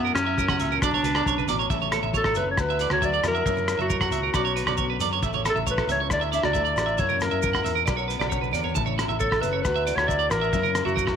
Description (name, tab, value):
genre	highlife guitar band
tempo	136 BPM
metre	4/4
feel	straight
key	A major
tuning	A4 = 442 Hz
part	clear clarinet	melody	0.0-11.2 s	B3 to E5	-26 LUFS	equal	none
part	picked plugged-in steel-string acoustic guitar	accompaniment	0.0-11.2 s	F#2 to F#4	-33 LUFS	left 12 dB	none
part	electric guitar at the edge of break-up	arpeggios	0.0-11.1 s	E4 to A5	-27 LUFS	right 12 dB	none
part	fingered electric bass	bass	0.0-11.2 s	F#1 to F#2	-31 LUFS	left 1 dB	none
part	maracas	percussion	0.1-11.1 s	none	-41 LUFS	left 15 dB	none
part	cloth-damped thuddy drum kit	drums	0.2-11.2 s	hi-hat, kick drum, rim click	-29 LUFS	left 1 dB	none
part	agogo bells	percussion	0.2-11.2 s	none	-35 LUFS	left 16 dB	none
part	congas	percussion	0.5-11.0 s	none	-37 LUFS	right 9 dB	none
room	moderate plate reverb, RT60 1.7 s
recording	1960s-style stereo with parts hard left and right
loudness	-21 LUFS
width	side -8 dB against mid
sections	0.0-1.7 A section; 1.7-11.2 B section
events	drum fill 8.4-8.8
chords	0.0 F#7; 0.8 Bmadd9; 1.7 A; 2.6 Dadd9; 3.5 F#7; 4.3 Bmadd9; 5.2 A; 6.1 Dsus2; 7.0 F#7; 7.9 Bmadd9; 8.8 A; 9.6 Dadd9; 10.5 F#7